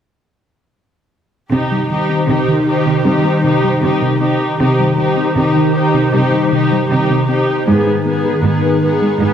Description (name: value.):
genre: cinematic, hybrid orchestral and electronic film score.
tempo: 78 BPM.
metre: 4/4.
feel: straight.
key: C minor.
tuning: A4 = 437 Hz.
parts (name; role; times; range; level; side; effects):
rich symphonic viola section; accompaniment; 1.5-9.3 s; Cb4 to Ab4; -17 LUFS; equal; none.
hollow soft pad; sustained chords; 1.5-9.3 s; Eb3 to C5; -16 LUFS; left 1 dB; ensemble chorus.
soft round pluck; arpeggios; 1.5-9.3 s; C3 to Ab4; -19 LUFS; equal; chorus, digital delay.
clear symphonic cello section; bass; 1.5-9.3 s; Ab2 to C3; -20 LUFS; right 2 dB; none.
room: wet scoring stage reverb, RT60 1.4 s.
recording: none.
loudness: -12 LUFS.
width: side -8 dB against mid.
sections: 1.5-9.3 A section.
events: build-up 1.5-9.3.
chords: 1.5 Cm; 7.7 Abm.